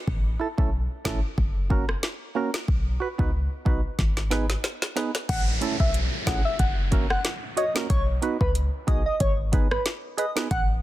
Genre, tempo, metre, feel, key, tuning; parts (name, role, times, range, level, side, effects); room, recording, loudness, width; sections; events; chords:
dancehall; 92 BPM; 4/4; swing 56% on 16ths; B major; A4 = 440 Hz
clean 808-style bass; bass; 0.1-10.8 s; F#1 to C#2; -26 LUFS; equal
afro-pop drum kit; drums; 0.1-10.7 s; crash cymbal, hi-hat, kick drum, rim click, snare drum; -25 LUFS; equal; overdrive
percussive organ stab; accompaniment; 0.4-10.5 s; A3 to C#5; -31 LUFS; right 5 dB; chorus
soft struck synth lead; melody; 5.3-10.6 s; B4 to F#5; -29 LUFS; left 1 dB; chorus
downlifter; sound effects; 5.3-10.5 s; -34 LUFS; equal
digital ambience; dense, heavily limited modern master; -22 LUFS; side -15 dB against mid
0.0-5.3 A section; 5.3-10.8 B section
drum fill 4.0-5.3
0.1 A; 1.4 F#; 2.7 B; 4.0 G#m; 5.3 A; 6.6 F#; 7.9 B; 9.2 G#m